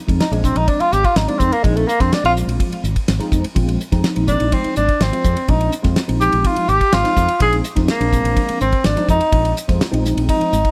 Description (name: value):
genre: electric jazz fusion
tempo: 125 BPM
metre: 4/4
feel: straight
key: Bb mixolydian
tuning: A4 = 441 Hz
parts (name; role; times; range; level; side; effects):
- tine electric piano; accompaniment; 0.1-10.6 s; F3 to F4; -25 LUFS; equal; phaser
- fingered electric bass; bass; 0.1-10.7 s; Ab1 to F2; -22 LUFS; equal; none
- damped 70s drum kit; drums; 0.1-10.7 s; hi-hat, kick drum, ride cymbal, snare drum; -22 LUFS; equal; none
- breathy tenor saxophone; melody; 0.2-10.7 s; Ab3 to Ab4; -20 LUFS; equal; none
room: light reverb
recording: none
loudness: -17 LUFS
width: mono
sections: 0.0-10.7 A section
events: tenor saxophone solo 0.0-10.7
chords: 0.0 Bb9sus4